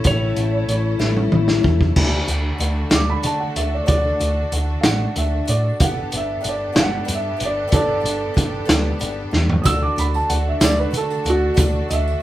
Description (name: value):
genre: folk rock and heartland rock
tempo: 62 BPM (dotted quarters)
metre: 6/8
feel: straight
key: D major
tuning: A4 = 441 Hz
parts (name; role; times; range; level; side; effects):
- lightly driven lead guitar; melody; 0.0-1.6 s; C#5; -26 LUFS; right 1 dB; none
- picked twelve-string acoustic guitar; accompaniment; 0.0-12.2 s; A2 to A4; -27 LUFS; left 5 dB; none
- clear symphonic string section; sustained chords; 0.0-12.2 s; A3 to A4; -32 LUFS; right 1 dB; none
- vintage drum kit; drums; 0.0-12.1 s; crash cymbal, hi-hat, kick drum, snare drum, toms; -19 LUFS; equal; none
- hollow-body short-scale fingered electric bass; bass; 0.1-12.1 s; G1 to D3; -22 LUFS; equal; none
- dark upright piano; second line; 2.9-12.2 s; F#4 to E6; -22 LUFS; right 2 dB; none
- warm concert grand piano; accompaniment; 9.6-12.2 s; F#4 to D5; -32 LUFS; left 2 dB; none
- tambourine; percussion; 9.7-12.2 s; none; -35 LUFS; right 7 dB; none
room: moderate studio reverb, RT60 0.5 s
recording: band playing live in one room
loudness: -17 LUFS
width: side -14 dB against mid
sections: 0.0-2.0 A section; 2.0-12.2 B section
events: drum fill 1.0-2.0, 9.3-9.7; upright piano solo 2.0-12.2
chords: 0.0 A; 2.0 D; 5.8 Gadd9; 9.7 D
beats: | 0.06 1.02 | 1.98 2.94 | 3.90 4.86 | 5.82 6.78 | 7.74 8.70 | 9.66 10.62 | 11.59